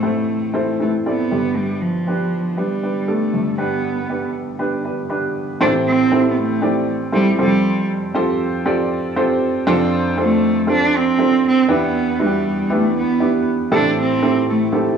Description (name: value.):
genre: pop.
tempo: 118 BPM.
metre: 4/4.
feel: straight.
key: A minor.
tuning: A4 = 441 Hz.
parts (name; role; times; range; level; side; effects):
dark cello; melody; 0.0-15.0 s; F3 to D4; -18 LUFS; right 2 dB; cassette tape, analog delay.
warm upright piano; accompaniment; 0.0-15.0 s; F1 to B5; -18 LUFS; equal; cassette tape.
room: moderate spring reverb, RT60 1.1 s, studio ambience.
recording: home recording on cassette, studio reverb.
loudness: -16 LUFS.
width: side -7 dB against mid.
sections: 0.0-5.6 A section; 5.6-15.0 B section.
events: upright piano fill 4.9-5.6.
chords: 0.0 Am; 1.3 G; 5.6 Am7; 7.4 Fadd9; 9.7 Dm7/F; 11.7 Em7; 13.7 Am7.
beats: 0.04 0.55 1.05 | 1.56 2.07 2.58 3.08 | 3.59 4.10 4.60 5.11 | 5.62 6.12 6.63 7.14 | 7.64 8.15 8.66 9.16 | 9.67 10.17 10.68 11.19 | 11.69 12.20 12.71 13.21 | 13.72 14.22 14.73.